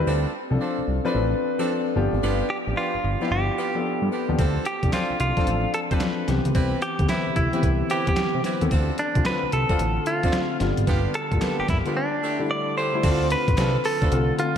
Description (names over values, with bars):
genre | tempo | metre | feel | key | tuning
R&B, new jack swing | 111 BPM | 4/4 | swing 64% on 16ths | D dorian | A4 = 440 Hz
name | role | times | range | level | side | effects
warm concert grand piano | accompaniment | 0.0-14.6 s | D3 to B4 | -26 LUFS | left 3 dB | slapback echo
fat analog bass | bass | 0.0-14.3 s | G1 to C3 | -25 LUFS | equal | none
warm horn section | stabs | 0.1-14.6 s | A3 to B4 | -32 LUFS | right 3 dB | slapback echo
direct-recorded clean electric guitar | melody | 2.5-14.6 s | D4 to D5 | -26 LUFS | right 1 dB | slapback echo
boom bap sampler-style drum kit | drums | 4.4-14.5 s | crash cymbal, handclaps, hi-hat, kick drum, snare drum | -26 LUFS | equal | none
group handclap | percussion | 13.6-14.0 s | none | -42 LUFS | right 3 dB | none
room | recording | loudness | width
moderate concert hall reverb, RT60 2.2 s | big arena sound | -21 LUFS | side -8 dB against mid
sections
0.0-13.0 A section; 13.0-14.6 B section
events
none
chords
0.1 Dm7; 2.0 G7; 4.4 Dm7; 6.3 Cmaj7; 8.7 Dm7; 10.6 G7; 12.0 A7sus4; 13.0 Dm7